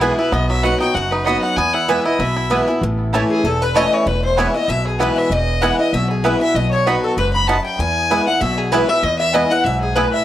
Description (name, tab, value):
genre	bluegrass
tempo	193 BPM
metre	4/4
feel	swing 54% on 8ths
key	E major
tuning	A4 = 440 Hz
part	bluegrass banjo	melody	0.0-10.0 s	F#3 to F#4	-24 LUFS	right 2 dB	tape echo
part	clear fiddle	melody	0.0-10.2 s	G#4 to B5	-21 LUFS	left 2 dB	none
part	picked steel-string acoustic guitar	accompaniment	0.0-10.2 s	E2 to F#4	-20 LUFS	left 1 dB	none
part	mandolin	stabs	0.0-10.1 s	A3 to B5	-23 LUFS	right 6 dB	none
part	upright bass	bass	0.0-10.0 s	E1 to E2	-22 LUFS	equal	none
part	lap resonator guitar	second line	3.3-10.2 s	G#4 to B5	-22 LUFS	left 2 dB	none
room	light reverb, small room ambience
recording	dry, gritty hardware recording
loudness	-15 LUFS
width	side -12 dB against mid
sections	0.0-2.8 A section; 2.8-10.2 B section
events	none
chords	0.3 B; 1.6 E; 2.8 A; 4.1 E; 6.5 B; 7.8 E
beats	0.02 | 0.33 0.64 0.95 1.26 | 1.57 1.89 2.20 2.51 | 2.82 3.13 3.44 3.75 | 4.06 4.37 4.68 5.00 | 5.31 5.62 5.93 6.24 | 6.55 6.86 7.17 7.48 | 7.79 8.10 8.41 8.72 | 9.04 9.35 9.66 9.97